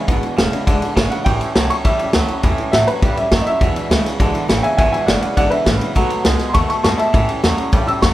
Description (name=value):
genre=rockabilly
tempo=204 BPM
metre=4/4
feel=straight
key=E mixolydian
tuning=A4 = 438 Hz
part: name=clear upright piano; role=melody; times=0.0-8.1 s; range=B4 to E6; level=-20 LUFS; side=equal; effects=none
part: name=picked steel-string acoustic guitar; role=accompaniment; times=0.0-8.1 s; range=E2 to F#4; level=-25 LUFS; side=left 2 dB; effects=none
part: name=twangy electric guitar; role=riff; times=0.0-8.1 s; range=E2 to A3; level=-22 LUFS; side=right 2 dB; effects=none
part: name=upright bass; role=bass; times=0.1-8.1 s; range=E1 to A2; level=-23 LUFS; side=equal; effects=none
part: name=vintage drum kit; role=drums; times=0.1-8.1 s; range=kick drum, ride cymbal, snare drum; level=-17 LUFS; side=equal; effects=none
room=light reverb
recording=band playing live in one room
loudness=-14 LUFS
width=side -15 dB against mid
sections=0.0-8.1 A section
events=upright piano solo 0.0-8.1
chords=0.0 E7; 1.3 A7; 3.6 E7; 6.0 B7; 7.1 A7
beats=| 0.08 0.38 0.67 0.96 | 1.26 1.55 1.85 2.14 | 2.44 2.73 3.02 3.32 | 3.61 3.91 4.20 4.50 | 4.79 5.08 5.38 5.67 | 5.97 6.26 6.56 6.85 | 7.15 7.44 7.74 8.03